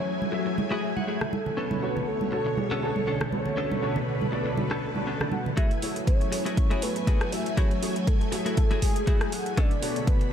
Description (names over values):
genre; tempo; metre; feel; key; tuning
nu-disco, nu disco; 120 BPM; 4/4; swing 55% on 16ths; F# minor; A4 = 439 Hz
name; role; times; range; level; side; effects
wide unison lead; melody; 0.0-10.3 s; G#4 to F#5; -32 LUFS; equal; cassette tape, diffuse ambient delay
string machine, full ensemble; sustained chords; 0.0-10.3 s; B2 to B5; -31 LUFS; equal; phaser, ensemble chorus, vintage 12-bit sampler grit, sidechain pumping
congas; percussion; 0.2-5.6 s; none; -32 LUFS; right 5 dB; none
warm grand piano; accompaniment; 0.3-10.3 s; D3 to G#5; -34 LUFS; left 1 dB; ensemble chorus, sidechain pumping, low-pass filter, diffuse ambient delay
direct-recorded clean electric guitar; riff; 0.3-10.3 s; A3 to G#5; -35 LUFS; left 2 dB; lush chorus, low-pass filter, diffuse ambient delay
pop drum kit; drums; 1.2-10.3 s; hi-hat, rim click; -37 LUFS; equal; high-pass filter on snare, low-pass filter on snare, high-pass filter on hats, low-pass filter on hats
electronic kick drum; drums; 5.6-10.2 s; none; -23 LUFS; equal; none
room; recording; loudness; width
moderate huge ambient reverb, RT60 6.4 s; dreamy mix soaked in reverb; -24 LUFS; side -9 dB against mid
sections
0.0-5.6 A section; 5.6-10.3 B section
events
clean electric guitar fill 0.6-1.6; build-up 5.6-10.3; filter sweep on grand piano 5.6-10.3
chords
0.0 F#m9; 1.6 Bm9; 5.6 F#m9; 9.6 Bm9